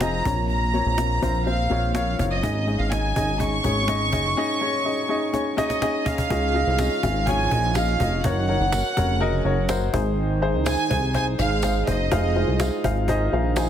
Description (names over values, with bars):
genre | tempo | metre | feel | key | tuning
piano-driven pop | 124 BPM | 4/4 | straight | Db major | A4 = 440 Hz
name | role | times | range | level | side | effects
warm studio violin section | melody | 0.0-12.8 s | Eb5 to Db6 | -26 LUFS | right 1 dB | none
dark upright piano | accompaniment | 0.0-13.7 s | Ab2 to Ab5 | -25 LUFS | left 3 dB | none
chorused synth bass | bass | 0.0-13.7 s | F1 to Db2 | -24 LUFS | equal | none
cajon | drums | 0.0-13.7 s | none | -30 LUFS | right 1 dB | none
warm French horn section | second line | 6.3-13.7 s | Db3 to Ab4 | -30 LUFS | right 8 dB | none
tambourine | percussion | 6.8-13.7 s | none | -38 LUFS | right 8 dB | none
room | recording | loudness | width
light reverb, studio reverb | dense, heavily limited modern master | -20 LUFS | side -9 dB against mid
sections
0.0-6.3 A section; 6.3-13.7 B section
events
drum fill 5.3-6.3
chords
0.3 Bbmadd9; 2.4 Absus4; 6.3 Dbadd9; 8.2 Gb; 9.9 Ab; 12.1 Fm7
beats
0.01 | 0.50 0.98 1.47 1.95 | 2.43 2.92 3.40 3.89 | 4.37 4.85 5.34 5.82 | 6.31 6.79 7.27 7.76 | 8.24 8.72 9.21 9.69 | 10.18 10.66 11.14 11.63 | 12.11 12.60 13.08 13.56